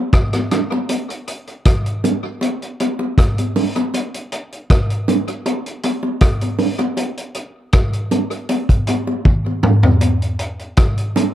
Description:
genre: reggae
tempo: 79 BPM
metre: 4/4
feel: straight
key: none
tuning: none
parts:
  - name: vintage drum kit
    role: drums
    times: 0.1-11.3 s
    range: hi-hat, kick drum, rim click, toms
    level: -16 LUFS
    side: equal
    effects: none
  - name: bongos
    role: percussion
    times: 0.3-11.3 s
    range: none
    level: -20 LUFS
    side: right 1 dB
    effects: none
room: light reverb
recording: dark, warm production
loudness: -15 LUFS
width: side -12 dB against mid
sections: 0.0-11.3 A section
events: drum fill 9.3-10.0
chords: none

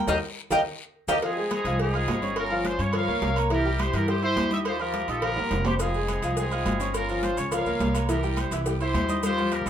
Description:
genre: latin, salsa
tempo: 210 BPM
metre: 4/4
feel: straight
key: F minor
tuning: A4 = 439 Hz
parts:
  - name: Cuban tres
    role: melody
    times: 0.0-1.2 s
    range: Eb5 to G5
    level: -24 LUFS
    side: equal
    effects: none
  - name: bright grand piano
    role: accompaniment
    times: 0.0-9.7 s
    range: E3 to F6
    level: -29 LUFS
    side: right 1 dB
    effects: none
  - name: upright bass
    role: bass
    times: 0.0-9.7 s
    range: F1 to G2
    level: -29 LUFS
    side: equal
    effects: none
  - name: congas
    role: percussion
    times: 0.1-9.7 s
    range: none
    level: -34 LUFS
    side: left 3 dB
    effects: none
  - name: cowbell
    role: percussion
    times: 0.1-9.7 s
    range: none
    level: -36 LUFS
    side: left 3 dB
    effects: none
  - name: guiro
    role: percussion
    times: 0.1-9.7 s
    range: none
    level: -43 LUFS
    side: left 6 dB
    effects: none
  - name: maracas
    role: percussion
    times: 0.1-1.1, 5.8-9.7 s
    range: none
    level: -42 LUFS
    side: left 8 dB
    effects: none
  - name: timbales and agogo bells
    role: percussion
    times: 0.1-9.7 s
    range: none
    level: -34 LUFS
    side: right 4 dB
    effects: none
  - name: bright horn section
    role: melody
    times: 1.1-9.7 s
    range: C4 to F5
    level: -28 LUFS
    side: left 1 dB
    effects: none
room: moderate small room reverb, RT60 0.6 s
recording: minimal, uncompressed stereo recording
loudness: -23 LUFS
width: side -9 dB against mid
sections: 0.0-1.2 A section; 1.2-9.7 B section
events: Cuban tres solo 0.0-1.2; band accent 0.1-1.2; drum fill 0.7-1.2, 5.4-5.8, 9.2-9.7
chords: 0.1 Ebadd9; 1.2 Fm7; 2.4 Gm7b5; 3.5 C7; 4.7 Ebadd9; 5.8 Fm7; 6.9 Gm7b5; 8.1 C7

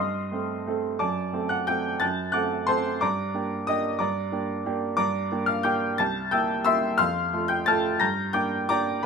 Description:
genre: classical, piano waltz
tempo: 179 BPM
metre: 3/4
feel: uneven beats, rubato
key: G minor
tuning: A4 = 437 Hz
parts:
  - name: clear upright piano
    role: solo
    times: 0.0-9.1 s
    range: C2 to Bb6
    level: -23 LUFS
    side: equal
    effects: none
room: moderate studio ambience, RT60 0.5 s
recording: none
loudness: -23 LUFS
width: side -5 dB against mid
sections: 0.0-9.1 A section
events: none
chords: 0.0 Am7b5/G; 1.0 D7/F#; 3.0 Gm; 6.0 C7; 7.0 F; 8.0 Gm

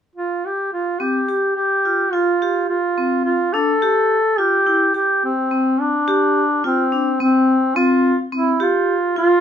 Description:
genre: progressive instrumental, progressive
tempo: 213 BPM (eighths)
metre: 9/8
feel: straight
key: F major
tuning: A4 = 440 Hz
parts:
  - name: warm duduk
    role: melody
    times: 0.2-9.4 s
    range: C4 to A4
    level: -17 LUFS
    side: equal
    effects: none
  - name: vibraphone with hard mallets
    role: arpeggios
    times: 1.0-9.3 s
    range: C4 to G4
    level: -20 LUFS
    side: left 1 dB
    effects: none
room: moderate studio reverb, RT60 0.6 s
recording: minimal, uncompressed stereo recording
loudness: -16 LUFS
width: side -8 dB against mid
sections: 0.0-1.0 A section; 1.0-6.1 B section; 6.1-9.4 C section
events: none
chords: 0.0 N.C.; 1.0 Fsus2; 3.5 Dmadd11; 4.7 C; 6.1 Fsus2 (rootless); 8.6 Dmadd11 (rootless)

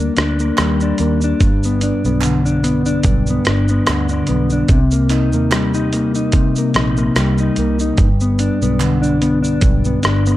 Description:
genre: indie pop, bedroom pop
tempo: 73 BPM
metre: 4/4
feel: swing 55% on 16ths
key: unclear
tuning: A4 = 440 Hz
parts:
  - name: mellow electric guitar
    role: accompaniment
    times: 0.0-10.4 s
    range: G2 to Eb4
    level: -16 LUFS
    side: left 1 dB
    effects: analog chorus, vibrato effect
  - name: vintage muted fingered electric bass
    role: bass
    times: 0.0-10.4 s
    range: G1 to Eb2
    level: -19 LUFS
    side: right 1 dB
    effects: none
  - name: dusty soul sampler-style drum kit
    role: drums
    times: 0.2-10.4 s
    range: hi-hat, kick drum, rim click, shaker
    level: -18 LUFS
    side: right 1 dB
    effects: vintage 12-bit sampler grit
  - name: group handclap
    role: percussion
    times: 0.6-9.0 s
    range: none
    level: -30 LUFS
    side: right 8 dB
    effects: none
room: digital ambience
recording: none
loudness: -13 LUFS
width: side -15 dB against mid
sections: 0.0-10.4 A section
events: none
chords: 0.0 Ebmaj7; 1.4 G; 4.7 Cm7; 8.0 G

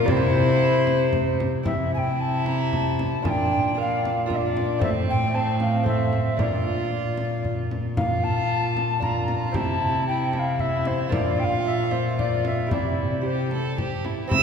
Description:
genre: classical, renaissance-style consort dance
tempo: 114 BPM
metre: 3/4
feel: straight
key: C mixolydian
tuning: A4 = 440 Hz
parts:
  - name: alto recorder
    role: melody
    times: 0.0-14.4 s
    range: C5 to Bb5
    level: -26 LUFS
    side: left 3 dB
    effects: none
  - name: rich violin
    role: second line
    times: 0.0-14.4 s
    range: C4 to E6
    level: -29 LUFS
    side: right 4 dB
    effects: none
  - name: lute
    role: accompaniment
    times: 0.0-14.4 s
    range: A2 to C5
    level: -32 LUFS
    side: right 3 dB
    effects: none
  - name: rich cello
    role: bass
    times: 0.0-14.4 s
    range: A2 to C3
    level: -26 LUFS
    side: equal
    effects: none
  - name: frame drum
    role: percussion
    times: 0.1-14.4 s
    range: none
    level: -29 LUFS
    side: left 1 dB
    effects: none
room: wet concert hall reverb, RT60 2.4 s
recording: heard from further back in the room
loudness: -21 LUFS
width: side -6 dB against mid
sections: 0.0-1.7 A section; 1.7-14.3 B section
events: none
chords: 0.1 C; 3.3 Bb; 4.8 Am; 6.4 Bb; 9.6 C; 11.1 Bb; 12.7 C

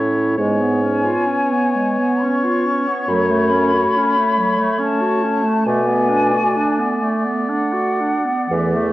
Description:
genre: classical, slow romantic movement for wind quintet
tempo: 57-71 BPM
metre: 3/4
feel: rubato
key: unclear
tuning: A4 = 441 Hz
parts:
  - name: warm oboe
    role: second line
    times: 0.0-8.9 s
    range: C#5 to D5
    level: -24 LUFS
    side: left 2 dB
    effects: none
  - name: clear clarinet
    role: accompaniment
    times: 0.0-8.9 s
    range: E3 to F#4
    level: -22 LUFS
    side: right 3 dB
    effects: none
  - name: warm French horn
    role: accompaniment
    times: 0.0-8.9 s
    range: A3 to C#4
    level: -22 LUFS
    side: equal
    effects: none
  - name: dark bassoon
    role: bass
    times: 0.0-8.9 s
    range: E2 to B2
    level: -20 LUFS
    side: right 1 dB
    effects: transformer saturation
  - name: mellow hollow silver concert flute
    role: melody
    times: 0.4-8.9 s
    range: E5 to C#6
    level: -20 LUFS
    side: left 2 dB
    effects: none
room: wet recital hall reverb, RT60 1.3 s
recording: worn, warbling old tape, cassette tape, warbly pitch drift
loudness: -15 LUFS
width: side -16 dB against mid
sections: 0.0-8.9 A section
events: none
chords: 0.4 C#7/G#; 3.1 F#m; 5.7 Bm7

